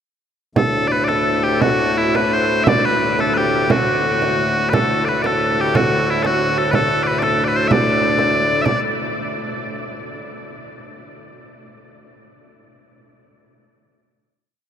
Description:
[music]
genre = medieval dance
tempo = 113-131 BPM (dotted quarters)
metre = 6/8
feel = straight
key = D mixolydian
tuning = A4 = 439 Hz
[part]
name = loud bright bagpipes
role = melody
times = 0.6-8.8 s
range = E4 to E5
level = -18 LUFS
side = left 1 dB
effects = none
[part]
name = pedal harmonium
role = drone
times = 0.6-8.7 s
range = D2 to A2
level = -22 LUFS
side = left 1 dB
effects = none
[part]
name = frame drum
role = percussion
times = 0.6-8.8 s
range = none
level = -23 LUFS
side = right 4 dB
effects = none
[sound]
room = wet huge ambient reverb, RT60 7.7 s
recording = in a vast, echoing space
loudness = -15 LUFS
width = side -8 dB against mid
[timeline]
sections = 0.6-8.7 A section; 8.7-9.6 final note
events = speeding up 0.6-9.6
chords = none

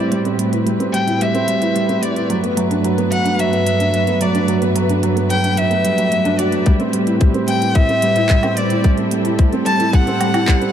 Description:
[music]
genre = piano and strings electronica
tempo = 110 BPM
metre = 4/4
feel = straight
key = A dorian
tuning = A4 = 439 Hz
[part]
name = rich violin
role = melody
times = 0.0-10.7 s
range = D5 to A5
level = -20 LUFS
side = left 1 dB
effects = low-pass filter
[part]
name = dark chamber string section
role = sustained chords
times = 0.0-10.7 s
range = G2 to B4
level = -22 LUFS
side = equal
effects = sidechain pumping
[part]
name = felt-muted upright piano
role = riff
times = 0.0-10.7 s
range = F#3 to F#4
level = -18 LUFS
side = right 2 dB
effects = digital delay
[part]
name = organic electronic drum kit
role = drums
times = 0.1-10.7 s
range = handclaps, hi-hat, woodblock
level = -27 LUFS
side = right 3 dB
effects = overdrive
[part]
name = electronic kick drum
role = drums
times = 6.7-10.6 s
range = none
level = -13 LUFS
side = left 1 dB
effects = overdrive
[sound]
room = moderate huge ambient reverb, RT60 7.8 s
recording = dark, warm production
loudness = -14 LUFS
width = side -9 dB against mid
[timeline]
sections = 0.0-10.7 A section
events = build-up 0.0-10.7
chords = 0.0 Am7; 2.3 Gmaj7; 6.7 Am7

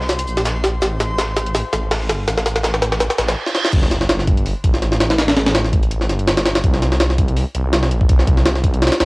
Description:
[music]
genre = drum and bass, jungle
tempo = 165 BPM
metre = 4/4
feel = swing 54% on 16ths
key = G minor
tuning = A4 = 435 Hz
[part]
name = detuned saw bass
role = bass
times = 0.0-9.1 s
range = G1 to C2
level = -20 LUFS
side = equal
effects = none
[part]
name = crunchy breakbeat drum kit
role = drums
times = 0.0-3.4 s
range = hi-hat, shaker, snare drum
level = -28 LUFS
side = equal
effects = high-pass filter on hats, studio ambience, high-pass filter on snare, high-pass filter on perc, high-pass filter on room
[part]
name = backwards swelling texture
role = texture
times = 0.0-3.4 s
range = C5 to C6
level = -30 LUFS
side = left 1 dB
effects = built-in reverb, cassette tape
[part]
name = jungle sampler-style drum kit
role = drums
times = 0.1-9.1 s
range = crash cymbal, hi-hat, kick drum, snare drum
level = -16 LUFS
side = equal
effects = high-pass filter on kick, studio ambience, high-pass filter on hats, high-pass filter on snare, high-pass filter on cymbals
[part]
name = reverse cymbal and sub drop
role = sound effects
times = 3.2-5.2 s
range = none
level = -26 LUFS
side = right 2 dB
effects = none
[sound]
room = light reverb, studio reverb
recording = home recording on cassette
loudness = -15 LUFS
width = side -26 dB against mid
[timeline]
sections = 0.0-3.7 A section; 3.7-9.1 B section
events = build-up 0.0-3.7; drum fill 0.0-3.4, 3.5; reverse cymbal 3.2-3.7; drop 3.7-9.1; impact 3.7-5.2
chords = 0.0 Bbsus2; 0.8 Am; 6.6 N.C.

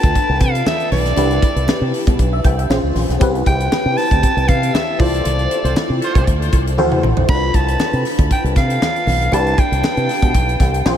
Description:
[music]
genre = polished 1980s jazz-funk pop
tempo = 118 BPM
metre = 4/4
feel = swing 54% on 16ths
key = unclear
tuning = A4 = 439 Hz
[part]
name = raspy soprano saxophone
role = melody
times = 0.0-11.0 s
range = D5 to B5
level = -21 LUFS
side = equal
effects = ping-pong delay
[part]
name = FM electric piano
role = accompaniment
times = 0.0-11.0 s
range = C4 to G5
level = -21 LUFS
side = left 1 dB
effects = ensemble chorus
[part]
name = fingered electric bass with an envelope filter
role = bass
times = 0.0-11.0 s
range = Bb1 to C3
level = -19 LUFS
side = equal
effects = none
[part]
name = tight funk drum kit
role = drums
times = 0.0-11.0 s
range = hi-hat, kick drum, snare drum, splash cymbal, toms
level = -18 LUFS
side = equal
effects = none
[part]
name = congas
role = percussion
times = 0.2-11.0 s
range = none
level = -30 LUFS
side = right 2 dB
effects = none
[part]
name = clear horn section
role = second line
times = 5.6-6.2 s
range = F4 to C5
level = -30 LUFS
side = right 2 dB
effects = ping-pong delay
[sound]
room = moderate huge ambient reverb, RT60 7.9 s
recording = dreamy mix soaked in reverb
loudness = -14 LUFS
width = side -10 dB against mid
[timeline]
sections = 0.0-11.0 A section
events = band accent 5.3-7.3; drum fill 6.8-7.3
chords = 0.0 Dm13; 1.2 Em7/C; 2.7 Bbm9; 3.2 Am9/C; 5.0 Dm9/C; 6.8 D9; 7.3 Bm7b5; 9.3 Em7/C

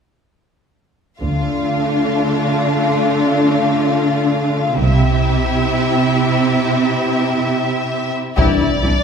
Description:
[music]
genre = cinematic, epic orchestral film score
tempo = free time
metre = none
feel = none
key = D minor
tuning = A4 = 436 Hz
[part]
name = clear symphonic violin section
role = second line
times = 1.2-8.9 s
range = D4 to F5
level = -20 LUFS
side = left 2 dB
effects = none
[part]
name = dark symphonic viola section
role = accompaniment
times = 1.2-8.9 s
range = A3 to E4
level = -20 LUFS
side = equal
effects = none
[part]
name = rich symphonic double bass section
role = bass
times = 1.2-8.9 s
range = C2 to D2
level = -19 LUFS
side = right 1 dB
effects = none
[part]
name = warm symphonic cello section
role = bass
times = 1.2-8.9 s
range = C3 to D3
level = -18 LUFS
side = right 2 dB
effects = none
[part]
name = warm symphonic violin section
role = melody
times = 8.4-9.0 s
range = D5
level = -21 LUFS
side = left 1 dB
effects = none
[part]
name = mellow French horn section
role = sustained chords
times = 8.4-8.7 s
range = E3 to D4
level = -20 LUFS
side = left 7 dB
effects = none
[part]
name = taiko ensemble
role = drums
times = 8.4-9.0 s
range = none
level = -20 LUFS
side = left 1 dB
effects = none
[sound]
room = wet recital hall reverb, RT60 1.7 s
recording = recorded in a church or concert hall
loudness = -14 LUFS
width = side -6 dB against mid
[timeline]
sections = 1.2-8.4 A section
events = none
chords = 1.2 Dm; 4.8 C; 8.4 Cadd9

